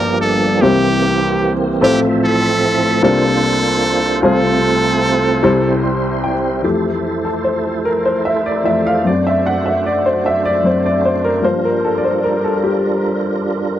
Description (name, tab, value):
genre	gospel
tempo	50 BPM (dotted quarters)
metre	6/8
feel	straight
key	F major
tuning	A4 = 440 Hz
part	brilliant trumpet	melody	0.0-5.8 s	G4 to Bb4	-17 LUFS	right 1 dB	none
part	warm upright piano	accompaniment	0.0-13.8 s	G1 to C6	-15 LUFS	left 2 dB	none
part	tonewheel organ	sustained chords	0.0-13.8 s	F#2 to E5	-19 LUFS	right 4 dB	slow rotary speaker, overdrive, chorus vibrato
room	little or no reverb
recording	dry, close 1970s-style studio recording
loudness	-13 LUFS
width	side -11 dB against mid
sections	0.0-6.6 A section; 6.6-13.8 B section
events	upright piano fill 5.4-6.6; upright piano solo 6.6-13.8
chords	0.0 Gm7; 0.6 C7; 1.8 Fmaj7/A; 3.0 C9sus4; 4.2 F/C; 5.4 C; 6.6 Fmaj7; 9.0 D7/F#; 11.4 Gm7